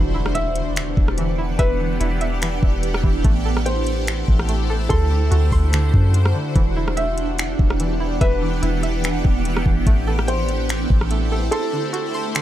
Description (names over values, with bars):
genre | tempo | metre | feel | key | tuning
hip hop, atmospheric cloud-rap | 145 BPM | 4/4 | half-time | E minor | A4 = 439 Hz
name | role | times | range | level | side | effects
shimmering ambient pad | sustained chords | 0.0-12.4 s | D3 to F#5 | -25 LUFS | right 2 dB | chorus, built-in reverb, phaser, sidechain pumping
string-like resonator pluck | arpeggios | 0.0-12.4 s | D3 to C6 | -29 LUFS | right 3 dB | chorus, digital delay
soft 808-style bass | bass | 0.0-11.5 s | E1 to F#2 | -21 LUFS | equal | none
impact | sound effects | 0.0-1.6 s | none | -34 LUFS | equal | none
drifting glass-harmonics texture | texture | 0.0-12.4 s | C4 to G5 | -35 LUFS | right 1 dB | chorus, built-in reverb
smooth R&B drum kit | drums | 0.3-12.4 s | finger snaps, hi-hat, kick drum, rim click | -19 LUFS | equal | none
felt-muted upright piano | melody | 0.4-12.4 s | A4 to E5 | -28 LUFS | equal | digital delay
room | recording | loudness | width
little or no reverb | dark, warm production | -17 LUFS | side -12 dB against mid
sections
0.0-12.4 A section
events
impact 0.0-1.6; break 11.5-12.4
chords
0.0 Em9; 3.2 Am7; 4.9 D7; 6.6 Em9; 9.9 Am7; 11.5 D7